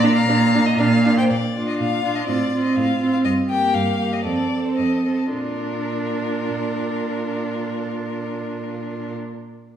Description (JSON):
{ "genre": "quick classical-period movement for string quartet", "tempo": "109-125 BPM", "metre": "4/4", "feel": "rubato", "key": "Bb major", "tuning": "A4 = 440 Hz", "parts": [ { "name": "rich violin", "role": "melody", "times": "0.0-9.1 s", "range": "Bb4 to Bb5", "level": "-26 LUFS", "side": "left 5 dB", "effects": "none" }, { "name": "rich violin", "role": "second line", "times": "0.0-9.2 s", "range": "F4 to G5", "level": "-29 LUFS", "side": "left 1 dB", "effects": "none" }, { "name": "rich viola", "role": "accompaniment", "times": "0.0-9.2 s", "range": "Bb3 to D4", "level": "-23 LUFS", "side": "right 2 dB", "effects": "none" }, { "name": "rich cello", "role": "bass", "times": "0.0-9.2 s", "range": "F2 to Bb2", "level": "-23 LUFS", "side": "right 2 dB", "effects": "none" } ], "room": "wet recital hall reverb, RT60 1.3 s", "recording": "heard from further back in the room", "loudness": "-19 LUFS", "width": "side -9 dB against mid", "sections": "0.0-1.3 A section; 1.3-5.3 B section; 5.3-9.6 C section", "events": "slowing down 0.3-5.3", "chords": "0.0 Bb; 2.3 F/A; 3.3 Gm7; 4.3 F; 5.3 Bb", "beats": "0.29 0.80 | 1.31 1.80 2.29 2.77 | 3.25 3.75 4.26 4.79 | 5.33 5.86 6.39 6.91 | 7.44 7.98 8.51 9.03" }